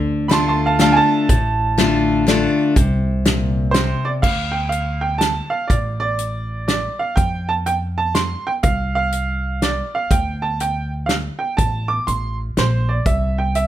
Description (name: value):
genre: honky-tonk and classic country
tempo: 122 BPM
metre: 3/4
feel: swing 64% on 8ths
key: D minor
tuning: A4 = 440 Hz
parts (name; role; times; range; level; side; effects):
- picked steel-string acoustic guitar; accompaniment; 0.0-4.2 s; A2 to F4; -18 LUFS; left 4 dB; none
- upright bass; bass; 0.0-13.7 s; A1 to F2; -22 LUFS; equal; none
- bright upright piano; melody; 0.3-13.7 s; C5 to D6; -21 LUFS; right 4 dB; none
- natural country drum kit; drums; 0.3-13.7 s; crash cymbal, hi-hat, kick drum, snare drum; -20 LUFS; equal; none
room: light reverb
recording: close, detailed microphones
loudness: -16 LUFS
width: side -12 dB against mid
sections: 0.0-4.2 A section; 4.2-13.7 B section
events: upright piano solo 0.0-4.2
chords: 0.0 Dm; 2.8 Bbsus2/C; 4.2 D5; 7.2 F5; 10.1 D5; 13.1 C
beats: 0.31 0.80 | 1.29 1.78 2.27 | 2.75 3.24 3.73 | 4.22 4.71 5.20 | 5.69 6.18 6.67 | 7.17 7.66 8.15 | 8.64 9.13 9.62 | 10.11 10.60 11.09 | 11.58 12.07 12.56 | 13.05 13.54